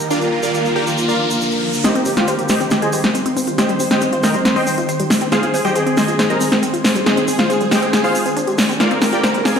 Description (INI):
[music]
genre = uplifting trance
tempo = 138 BPM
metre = 4/4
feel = straight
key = C minor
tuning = A4 = 440 Hz
[part]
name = shimmering ambient pad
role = sustained chords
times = 0.0-9.6 s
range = D3 to C5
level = -22 LUFS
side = equal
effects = chorus, built-in reverb
[part]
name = riser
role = sound effects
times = 0.0-1.8, 8.8-9.6 s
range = none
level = -25 LUFS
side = equal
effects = none
[part]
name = supersaw chords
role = melody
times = 0.1-9.6 s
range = D4 to C6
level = -19 LUFS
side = equal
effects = low-pass filter, tape echo
[part]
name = egg shaker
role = percussion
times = 0.1-9.6 s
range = none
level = -29 LUFS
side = right 2 dB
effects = none
[part]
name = wide unison pluck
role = arpeggios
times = 1.8-9.6 s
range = G3 to C5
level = -22 LUFS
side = left 2 dB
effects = ping-pong delay
[part]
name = big-room dance drum kit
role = drums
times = 1.8-9.6 s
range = hi-hat, snare drum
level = -18 LUFS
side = equal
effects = overdrive
[sound]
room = moderate digital room reverb, RT60 1.1 s, digital ambience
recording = played on a big sound system in a bare room, stone room reverb, high-pass filter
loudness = -14 LUFS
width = side -7 dB against mid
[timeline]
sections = 0.0-1.8 A section; 1.8-9.6 B section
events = riser 0.0-1.8; build-up 1.8-9.6; drum fill 1.8-9.6; filter sweep on supersaw synth 1.8-9.6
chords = 0.1 Bb; 1.8 Cm; 5.3 Ab; 8.8 Bb